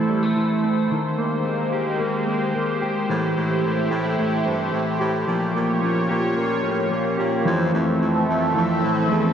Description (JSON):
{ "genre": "dream pop", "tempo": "110 BPM", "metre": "4/4", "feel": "straight", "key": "F major", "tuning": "A4 = 437 Hz", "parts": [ { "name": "phased analog pad", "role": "sustained chords", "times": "0.0-9.3 s", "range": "Ab3 to E5", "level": "-23 LUFS", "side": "right 2 dB", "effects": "phaser, chorus" }, { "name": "mellow electric guitar", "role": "arpeggios", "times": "0.0-9.3 s", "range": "Eb3 to G4", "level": "-23 LUFS", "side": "left 2 dB", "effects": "analog chorus, ping-pong delay" }, { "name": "warm baritone saxophone", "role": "bass", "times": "3.1-9.3 s", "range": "E2 to Bb2", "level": "-28 LUFS", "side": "equal", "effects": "none" }, { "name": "mellow electric guitar", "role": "accompaniment", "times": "7.4-9.3 s", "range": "F3 to E4", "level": "-24 LUFS", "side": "right 3 dB", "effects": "harmonic tremolo, wide subtle chorus" } ], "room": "wet huge ambient reverb, RT60 7.2 s", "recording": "worn, warbling old tape, cassette tape, warbly pitch drift", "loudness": "-19 LUFS", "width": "side -8 dB against mid", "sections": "0.0-7.5 A section; 7.5-9.3 B section", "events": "none", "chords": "0.0 Am7/E; 0.9 Abmaj9; 3.1 Am7; 5.3 Bbm6; 7.5 Fmaj7" }